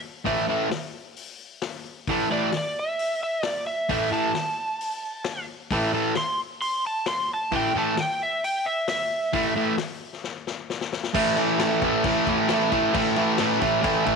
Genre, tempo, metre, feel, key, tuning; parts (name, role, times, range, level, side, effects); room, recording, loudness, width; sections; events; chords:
garage rock duo or trio; 132 BPM; 4/4; straight; A minor; A4 = 440 Hz
fuzz guitar; riff; 0.2-14.2 s; A2 to A3; -22 LUFS; right 1 dB; distortion
vintage drum kit; drums; 0.3-14.2 s; crash cymbal, hi-hat, kick drum, snare drum; -32 LUFS; left 7 dB
overdriven slide guitar; melody; 2.3-9.8 s; D5 to C6; -26 LUFS; equal
light reverb, small room ambience; 1960s-style stereo; -22 LUFS; side -5 dB against mid
0.0-11.1 A section; 11.1-14.2 B section
electric slide guitar solo 0.0-11.1; drum fill 10.2-11.1
0.0 A5